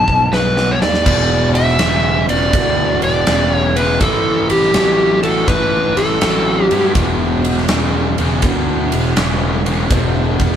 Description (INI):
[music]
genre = blues rock power trio and southern rock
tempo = 81 BPM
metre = 4/4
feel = swing 67% on 8ths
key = unclear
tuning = A4 = 440 Hz
[part]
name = overdriven slide guitar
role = melody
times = 0.0-6.9 s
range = G4 to A5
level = -16 LUFS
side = equal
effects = none
[part]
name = fuzz fingered electric bass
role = bass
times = 0.0-10.6 s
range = E1 to G2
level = -20 LUFS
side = equal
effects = overdrive
[part]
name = huge arena drum kit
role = drums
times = 0.1-10.6 s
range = crash cymbal, kick drum, ride cymbal, snare drum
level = -18 LUFS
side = equal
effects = none
[part]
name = fuzz guitar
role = riff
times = 1.1-10.6 s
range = E2 to F#3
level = -18 LUFS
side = equal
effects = distortion
[sound]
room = moderate studio reverb, RT60 0.6 s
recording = band playing live in one room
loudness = -12 LUFS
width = side -9 dB against mid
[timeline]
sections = 0.0-1.1 A section; 1.1-10.6 B section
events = drum fill 0.0-1.1; electric slide guitar solo 0.0-1.1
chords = 0.0 B7; 1.1 E5; 4.0 A5; 7.0 E5